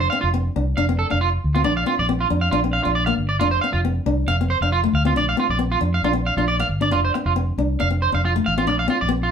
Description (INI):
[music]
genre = highlife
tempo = 137 BPM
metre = 4/4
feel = straight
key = F major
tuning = A4 = 440 Hz
[part]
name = flamenco guitar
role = accompaniment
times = 0.0-9.3 s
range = A3 to D4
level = -24 LUFS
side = left 4 dB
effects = none
[part]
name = electric guitar at the edge of break-up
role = arpeggios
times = 0.0-9.3 s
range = F4 to F5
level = -22 LUFS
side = right 4 dB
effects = none
[part]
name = fingered electric bass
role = bass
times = 0.0-9.3 s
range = F1 to F2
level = -22 LUFS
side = equal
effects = none
[sound]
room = moderate studio reverb, RT60 0.6 s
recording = band playing live in one room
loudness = -18 LUFS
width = side -7 dB against mid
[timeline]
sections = 0.0-9.3 A section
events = none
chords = 0.0 F5; 1.7 Bb; 3.4 F5; 5.2 Bb; 6.9 F; 8.7 Bb